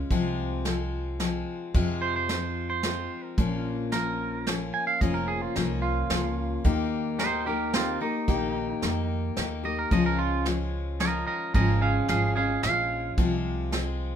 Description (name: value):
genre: honky-tonk and classic country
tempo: 110 BPM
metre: 3/4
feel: straight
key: F minor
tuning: A4 = 438 Hz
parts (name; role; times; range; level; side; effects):
- picked steel-string acoustic guitar; accompaniment; 0.0-14.2 s; Bb2 to G4; -29 LUFS; left 4 dB; none
- upright bass; bass; 0.0-14.2 s; F1 to F2; -30 LUFS; right 1 dB; none
- soft brush drum kit; drums; 0.1-13.9 s; hi-hat, kick drum, snare drum; -28 LUFS; right 1 dB; none
- twangy electric guitar; second line; 2.0-13.7 s; C4 to Ab5; -29 LUFS; right 4 dB; none
room: moderate studio ambience, RT60 0.5 s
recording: minimal, uncompressed stereo recording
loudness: -25 LUFS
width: side -8 dB against mid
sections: 0.0-14.2 A section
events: clean electric guitar solo 0.0-14.2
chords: 0.1 Fm/C; 3.4 Bbm; 6.6 Eb; 9.9 Db; 13.2 Fm/C